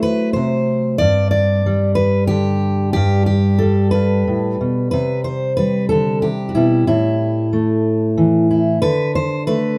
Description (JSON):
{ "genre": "folk, solo fingerstyle acoustic guitar", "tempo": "62 BPM (dotted quarters)", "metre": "6/8", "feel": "straight", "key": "G major", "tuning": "A4 = 441 Hz", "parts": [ { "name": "fingerpicked steel-string acoustic guitar", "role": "solo", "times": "0.0-9.8 s", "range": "G2 to D5", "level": "-17 LUFS", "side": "equal", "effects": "none" } ], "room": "moderate stone room reverb, RT60 1.0 s", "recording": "band playing live in one room", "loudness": "-17 LUFS", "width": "mono", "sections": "0.0-9.8 A section", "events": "none", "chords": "0.0 F#m7b5; 1.0 G; 4.9 C5; 6.9 A5; 8.8 D5", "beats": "0.04 | 1.01 1.98 | 2.96 3.94 | 4.93 5.91 | 6.88 7.85 | 8.82" }